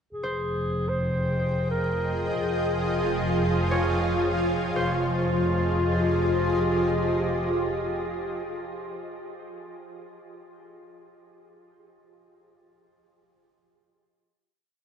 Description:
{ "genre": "ambient", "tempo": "78 BPM", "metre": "3/4", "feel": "straight", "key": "unclear", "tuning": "A4 = 441 Hz", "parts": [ { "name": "mellow clarinet", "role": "melody", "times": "0.1-7.8 s", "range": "F4 to C5", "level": "-32 LUFS", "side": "left 1 dB", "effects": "ping-pong delay" }, { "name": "shimmering ambient pad", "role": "sustained chords", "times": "1.3-7.8 s", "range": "F3 to G5", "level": "-27 LUFS", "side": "equal", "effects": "chorus, built-in reverb" }, { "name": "dark chamber double bass section", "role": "bass", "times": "0.1-7.8 s", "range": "F1", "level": "-29 LUFS", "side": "equal", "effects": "none" }, { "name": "concert harp", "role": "arpeggios", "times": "0.2-8.5 s", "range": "C5 to Db5", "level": "-37 LUFS", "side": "equal", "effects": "ping-pong delay" } ], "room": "wet huge ambient reverb, RT60 8.2 s", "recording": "dreamy mix soaked in reverb, nothing above 10.4 kHz", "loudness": "-23 LUFS", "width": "side -7 dB against mid", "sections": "0.1-4.8 A section; 4.8-7.1 final chord", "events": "fade-in on ambient pad 0.1-4.8", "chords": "0.1 Fm7; 2.4 Dbadd9/F" }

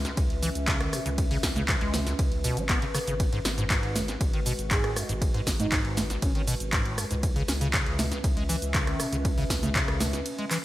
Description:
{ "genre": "acid house", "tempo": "119 BPM", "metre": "4/4", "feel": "straight", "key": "unclear", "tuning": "A4 = 440 Hz", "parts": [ { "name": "dark analog pad", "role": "sustained chords", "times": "0.0-10.6 s", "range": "G#3 to E5", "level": "-36 LUFS", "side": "equal", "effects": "chorus, phaser, sidechain pumping" }, { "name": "saturated sub bass", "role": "bass", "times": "0.0-10.2 s", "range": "G#1 to C#2", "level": "-33 LUFS", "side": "equal", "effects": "tube saturation, sidechain pumping" }, { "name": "punchy analog drum machine", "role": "drums", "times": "0.0-10.6 s", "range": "congas, handclaps, hi-hat, ride cymbal, rim click, shaker, snare drum", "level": "-30 LUFS", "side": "equal", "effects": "gated reverb" }, { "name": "acid bass, square", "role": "riff", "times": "0.1-10.6 s", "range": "G#1 to C#4", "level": "-32 LUFS", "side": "equal", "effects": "analog chorus, digital delay" }, { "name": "electronic kick drum", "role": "drums", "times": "0.2-9.9 s", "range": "none", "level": "-28 LUFS", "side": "equal", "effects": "none" }, { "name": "breathy flute-like synth lead", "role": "melody", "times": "4.7-6.4 s", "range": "C#4 to G#4", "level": "-36 LUFS", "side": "right 3 dB", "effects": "analog chorus, digital delay" } ], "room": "light reverb", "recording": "bright 1980s-style digital production", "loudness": "-24 LUFS", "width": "side -15 dB against mid", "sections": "0.0-10.6 A section", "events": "break 10.3-10.6", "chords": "0.0 C#m7; 3.2 G#m7; 7.2 C#m7" }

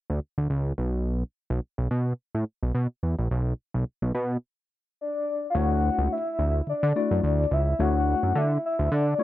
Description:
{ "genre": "early-eighties boogie funk", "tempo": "107 BPM", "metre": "4/4", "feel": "swing 56% on 16ths", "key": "unclear", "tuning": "A4 = 441 Hz", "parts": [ { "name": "fat analog bass", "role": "bass", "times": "0.1-9.1 s", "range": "A#1 to D3", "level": "-24 LUFS", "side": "right 1 dB", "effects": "none" }, { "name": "soft octave-layered synth lead", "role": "melody", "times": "5.0-9.2 s", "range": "D5 to F#5", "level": "-27 LUFS", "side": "left 2 dB", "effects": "chorus, tremolo, slapback echo" }, { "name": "tine electric piano", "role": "accompaniment", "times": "5.5-9.2 s", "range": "A3 to D5", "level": "-29 LUFS", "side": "left 5 dB", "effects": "overdrive" } ], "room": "light reverb, digital ambience", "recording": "dark, warm production", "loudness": "-24 LUFS", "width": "side -14 dB against mid", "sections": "0.0-5.6 A section; 5.6-9.2 B section", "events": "stop 4.4-5.6", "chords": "0.0 Dmaj7(no3); 0.8 N.C.; 5.6 Dmaj9" }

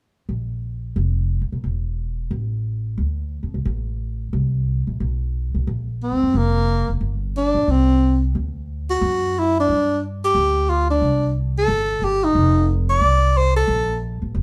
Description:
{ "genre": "jazz, small-group swing and bop", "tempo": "179 BPM", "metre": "4/4", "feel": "swing 62% on 8ths", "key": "Bb major", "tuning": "A4 = 440 Hz", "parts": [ { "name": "upright bass", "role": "bass", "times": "0.3-14.4 s", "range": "E1 to G2", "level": "-24 LUFS", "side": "equal", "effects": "none" }, { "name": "warm tenor saxophone", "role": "melody", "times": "6.0-14.0 s", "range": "Bb3 to D5", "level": "-21 LUFS", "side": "equal", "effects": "none" } ], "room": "moderate club reverb, RT60 0.8 s", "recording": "heard from further back in the room", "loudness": "-21 LUFS", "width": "mono", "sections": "0.3-5.7 A section; 5.7-14.4 B section", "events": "none", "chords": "0.3 Bb5; 1.6 N.C.; 3.0 D5; 4.3 Bbsus2; 5.0 N.C.; 5.7 Bbsus2; 7.0 Gm; 7.7 N.C.; 8.3 D; 9.7 G5; 11.0 Csus2; 12.4 F5; 13.7 Bb5" }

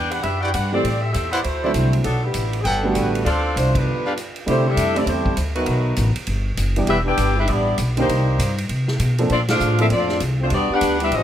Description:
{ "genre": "jazz, big band swing", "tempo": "198 BPM", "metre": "4/4", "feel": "swing 62% on 8ths", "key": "G major, C major from 4.5 s", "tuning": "A4 = 441 Hz", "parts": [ { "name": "mellow saxophone section", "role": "melody", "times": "0.0-11.2 s", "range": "D3 to G5", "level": "-23 LUFS", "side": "equal", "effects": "none" }, { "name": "upright bass", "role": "bass", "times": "0.0-11.2 s", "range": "E1 to C3", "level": "-21 LUFS", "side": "equal", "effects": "none" }, { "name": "swinging big-band drum kit", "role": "drums", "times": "0.1-11.2 s", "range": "hi-hat, kick drum, ride cymbal, snare drum", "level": "-29 LUFS", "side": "right 1 dB", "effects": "none" }, { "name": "clear trumpet section", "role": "stabs", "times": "0.4-4.1 s", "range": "D4 to G5", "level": "-25 LUFS", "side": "equal", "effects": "none" }, { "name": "warm concert grand piano", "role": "accompaniment", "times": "0.7-9.9 s", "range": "D3 to A4", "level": "-24 LUFS", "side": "right 2 dB", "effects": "none" }, { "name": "dark trombone section", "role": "second line", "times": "3.7-11.2 s", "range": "D3 to G4", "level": "-24 LUFS", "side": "left 1 dB", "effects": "none" } ], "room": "light reverb", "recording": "none", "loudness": "-17 LUFS", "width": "side -10 dB against mid", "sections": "0.0-4.5 A section; 4.5-11.2 B section", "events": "band accent 3.7, 9.5; break 3.9-4.5", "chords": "0.0 Em9; 0.8 Am7; 1.4 D13; 2.0 Gmaj9; 3.3 Dm7; 3.9 G7; 4.5 C69; 5.7 B7b13; 6.9 Em7; 8.1 Cm7; 8.7 F; 9.3 Bbmaj9; 10.5 Em9" }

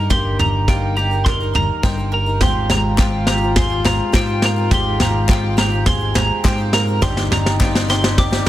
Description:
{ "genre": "indie folk with a building arrangement", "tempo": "104 BPM", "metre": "4/4", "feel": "straight", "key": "unclear", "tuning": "A4 = 440 Hz", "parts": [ { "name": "twelve-string electric guitar", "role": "melody", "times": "0.0-8.5 s", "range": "G5 to D6", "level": "-22 LUFS", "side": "right 1 dB", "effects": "tremolo, digital delay" }, { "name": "fingerpicked steel-string acoustic guitar", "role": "accompaniment", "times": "0.0-2.4 s", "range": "G2 to G4", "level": "-29 LUFS", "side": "left 3 dB", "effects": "none" }, { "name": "picked twelve-string acoustic guitar", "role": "accompaniment", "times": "0.0-8.5 s", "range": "G2 to Bb4", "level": "-29 LUFS", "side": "left 6 dB", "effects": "none" }, { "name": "mandolin", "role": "arpeggios", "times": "0.0-8.5 s", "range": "F4 to C5", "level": "-28 LUFS", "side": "right 9 dB", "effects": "digital delay" }, { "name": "picked electric bass", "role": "bass", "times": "0.0-8.4 s", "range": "G1 to Ab2", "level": "-20 LUFS", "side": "equal", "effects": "none" }, { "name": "vintage brush drum kit", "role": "drums", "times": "0.1-8.5 s", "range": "kick drum, snare drum, toms", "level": "-18 LUFS", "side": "equal", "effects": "soft clipping on snare" }, { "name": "clear trombone", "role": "second line", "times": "2.4-8.5 s", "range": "Eb4 to F4", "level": "-26 LUFS", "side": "left 6 dB", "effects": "none" }, { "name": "bright upright piano", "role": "accompaniment", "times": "2.4-8.5 s", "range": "G1 to D5", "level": "-28 LUFS", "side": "right 5 dB", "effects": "none" }, { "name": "warm studio string section", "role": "sustained chords", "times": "2.4-8.5 s", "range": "Eb3 to G5", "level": "-32 LUFS", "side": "left 2 dB", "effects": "none" }, { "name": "group handclap", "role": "percussion", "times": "3.0-7.7 s", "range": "none", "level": "-28 LUFS", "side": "left 6 dB", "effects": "none" } ], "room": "small room reverb", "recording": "dense, heavily limited modern master", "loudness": "-14 LUFS", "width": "side -14 dB against mid", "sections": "0.0-8.5 A section", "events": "build-up 0.0-8.5; drum fill 0.0-8.5", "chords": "0.0 Eb/G; 2.4 Fmadd9/Ab; 7.0 Cmadd9/G" }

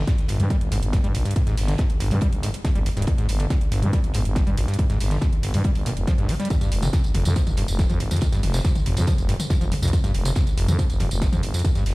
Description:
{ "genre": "driving peak-time techno", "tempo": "140 BPM", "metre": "4/4", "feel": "straight", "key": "G phrygian", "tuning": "A4 = 443 Hz", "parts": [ { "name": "screaming distorted acid line", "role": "riff", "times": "0.0-11.8 s", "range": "F1 to G3", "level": "-26 LUFS", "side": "equal", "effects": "distortion, chorus, sidechain pumping, ping-pong delay" }, { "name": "growling FM bass", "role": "bass", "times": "0.0-11.9 s", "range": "D1 to G2", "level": "-24 LUFS", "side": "equal", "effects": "sidechain pumping" }, { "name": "damped 70s drum kit", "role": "drums", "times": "0.1-11.9 s", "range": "hi-hat, snare drum", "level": "-40 LUFS", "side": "right 3 dB", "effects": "sidechain pumping on hats, high-pass filter on hats, high-pass filter on snare, high-pass filter on room" }, { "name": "electronic kick drum", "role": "drums", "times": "0.1-11.7 s", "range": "none", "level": "-22 LUFS", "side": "equal", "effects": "none" }, { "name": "techno drum kit", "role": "drums", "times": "0.1-11.9 s", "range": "hi-hat, tambourine, toms", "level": "-31 LUFS", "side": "equal", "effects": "sidechain pumping on hats, sidechain pumping on cymbals, sidechain pumping on toms, sidechain pumping on perc" } ], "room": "little or no reverb", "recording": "played on a big sound system in a bare room, large studio reverb", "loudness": "-19 LUFS", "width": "side -22 dB against mid", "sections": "0.0-11.9 A section", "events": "none", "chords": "none" }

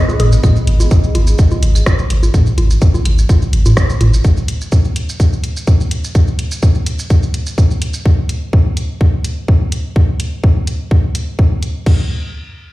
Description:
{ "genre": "minimal techno", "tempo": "126 BPM", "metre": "4/4", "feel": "straight", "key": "G# minor", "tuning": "A4 = 440 Hz", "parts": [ { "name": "electronic bongos, toms and claves", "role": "percussion", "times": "0.1-4.1 s", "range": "none", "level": "-18 LUFS", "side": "right 1 dB", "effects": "tape echo" }, { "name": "maracas", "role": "percussion", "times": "0.1-8.0 s", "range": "none", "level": "-28 LUFS", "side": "right 3 dB", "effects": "none" }, { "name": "punchy sub bass", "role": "bass", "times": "0.2-4.2 s", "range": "G#1", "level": "-12 LUFS", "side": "equal", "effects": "sidechain pumping" }, { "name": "punchy analog drum machine", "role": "drums", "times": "0.2-12.0 s", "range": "crash cymbal, hi-hat, rim click", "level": "-24 LUFS", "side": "equal", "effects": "none" }, { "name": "electronic kick drum", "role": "drums", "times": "0.4-12.0 s", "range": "none", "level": "-10 LUFS", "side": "equal", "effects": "none" } ], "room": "little or no reverb", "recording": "played on a big sound system in a bare room, large studio reverb", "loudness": "-11 LUFS", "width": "side -18 dB against mid", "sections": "0.0-11.9 A section", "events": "none", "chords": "none" }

